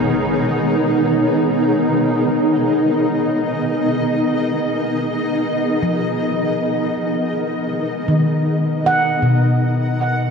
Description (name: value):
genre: ambient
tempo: free time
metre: none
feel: none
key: unclear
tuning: A4 = 440 Hz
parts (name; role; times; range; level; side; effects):
- granular cloud pad; sustained chords; 0.0-10.3 s; B3 to F#5; -17 LUFS; equal; built-in reverb
- handpan; arpeggios; 0.0-0.3, 5.8-10.3 s; B2 to F#5; -18 LUFS; equal; diffuse ambient delay
room: wet concert hall reverb, RT60 2.4 s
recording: cassette tape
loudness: -16 LUFS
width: side -5 dB against mid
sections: 0.3-10.3 A section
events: none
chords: 0.3 G#m; 7.2 B